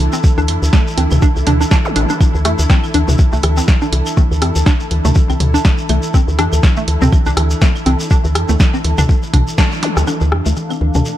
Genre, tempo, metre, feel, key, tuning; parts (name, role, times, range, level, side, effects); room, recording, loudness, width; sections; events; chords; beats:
minimal techno; 122 BPM; 4/4; swing 57% on 16ths; D minor; A4 = 441 Hz
woody FM bass; bass; 0.0-11.0 s; A1 to F2; -15 LUFS; equal; sidechain pumping
airy breathy pad; texture; 0.0-11.2 s; D4 to A5; -25 LUFS; equal; chorus, sidechain pumping
swarming drone; texture; 0.0-11.2 s; D4 to E4; -29 LUFS; right 1 dB; built-in reverb, sidechain pumping
hollow square pluck; riff; 0.1-11.0 s; A3 to A4; -21 LUFS; equal; analog chorus, cassette tape, sidechain pumping, ping-pong delay
shekere; percussion; 0.1-11.2 s; -28 LUFS; left 1 dB
electronic kick drum; drums; 0.2-9.7 s; -12 LUFS; equal
garage drum kit; percussion; 0.2-11.2 s; claves, congas, rim click, toms; -21 LUFS; left 2 dB
punchy analog drum machine; drums; 0.5-9.9 s; hi-hat, snare drum; -22 LUFS; right 1 dB; low-pass filter on hats, low-pass filter on snare
zap; sound effects; 1.9-2.0, 9.8-10.0 s; -26 LUFS; right 1 dB
little or no reverb; -11 LUFS; side -13 dB against mid
0.0-10.1 A section; 10.1-11.2 B section
band accent 9.6
0.0 D5; 10.1 Dm
| 0.24 0.73 1.22 1.71 | 2.21 2.70 3.19 3.68 | 4.17 4.66 5.16 5.65 | 6.14 6.63 7.12 7.62 | 8.11 8.60 9.09 9.58 | 10.07 10.57 11.06